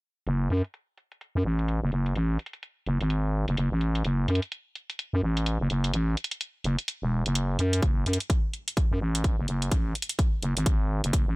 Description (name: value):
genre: bass house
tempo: 127 BPM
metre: 4/4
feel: swing 60% on 16ths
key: F# minor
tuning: A4 = 440 Hz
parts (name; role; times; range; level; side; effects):
- growling FM bass; bass; 0.3-11.4 s; E1 to F#2; -25 LUFS; equal; sidechain pumping
- electronic hi-hat; drums; 0.3-11.2 s; none; -33 LUFS; equal; low-pass filter on hats, low-pass filter on room
- electronic kick drum; drums; 7.8-11.2 s; none; -25 LUFS; equal; none
room: little or no reverb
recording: none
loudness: -25 LUFS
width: side -24 dB against mid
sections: 0.3-11.4 A section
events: none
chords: none